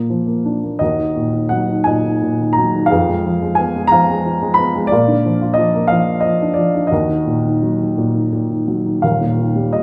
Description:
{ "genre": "classical, lyrical solo piano", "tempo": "58 BPM (dotted quarters)", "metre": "6/8", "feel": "uneven beats, rubato", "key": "Eb minor", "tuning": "A4 = 440 Hz", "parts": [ { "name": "dark upright piano", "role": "solo", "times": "0.0-9.8 s", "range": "Eb1 to Cb6", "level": "-16 LUFS", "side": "equal", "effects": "none" } ], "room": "moderate recital hall reverb, RT60 1.6 s", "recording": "recorded in a church or concert hall", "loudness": "-16 LUFS", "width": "mono", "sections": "0.0-9.0 A section", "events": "none", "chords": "0.0 Bb; 0.8 Ebm; 2.9 Fdim; 4.9 Bb; 6.9 Ebm; 9.0 Eb", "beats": "| 0.80 1.86 | 2.91 3.92 | 4.91 5.91 | 6.91 7.95 | 9.03" }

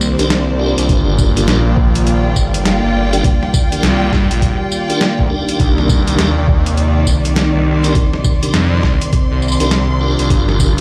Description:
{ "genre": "glitch hop", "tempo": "102 BPM", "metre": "4/4", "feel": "swing 62% on 16ths", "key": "C minor", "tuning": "A4 = 437 Hz", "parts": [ { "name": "warm analog pad", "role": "sustained chords", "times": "0.0-10.8 s", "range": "C3 to D5", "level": "-24 LUFS", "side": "equal", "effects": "chorus, sidechain pumping" }, { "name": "phased detuned saw bass", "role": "bass", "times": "0.0-10.8 s", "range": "G1 to G2", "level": "-18 LUFS", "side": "equal", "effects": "phaser, tube saturation" }, { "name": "boom bap sampler-style drum kit", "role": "drums", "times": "0.0-10.8 s", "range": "hi-hat, snare drum, tambourine", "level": "-22 LUFS", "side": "equal", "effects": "none" }, { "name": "warm studio string section", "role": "texture", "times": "0.0-10.8 s", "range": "Eb3 to C6", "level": "-23 LUFS", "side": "equal", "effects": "sidechain pumping" }, { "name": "tonewheel organ", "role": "stabs", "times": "0.2-10.8 s", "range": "D4 to Bb4", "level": "-23 LUFS", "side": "equal", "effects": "chorus vibrato, fast rotary speaker, sidechain pumping, tape echo" }, { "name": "electronic kick drum", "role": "drums", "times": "0.9-10.7 s", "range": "none", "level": "-17 LUFS", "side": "equal", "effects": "none" } ], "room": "light reverb, digital ambience", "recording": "played on a big sound system in a bare room, large studio reverb", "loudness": "-14 LUFS", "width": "mono", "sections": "0.0-10.8 A section", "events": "none", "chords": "0.0 Cm9; 0.9 Gm7; 5.6 Cm9; 10.3 Gm7", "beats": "0.30 | 0.89 1.48 2.07 2.66 | 3.24 3.83 4.42 5.01 | 5.60 6.19 6.77 7.36 | 7.95 8.54 9.13 9.71 | 10.30" }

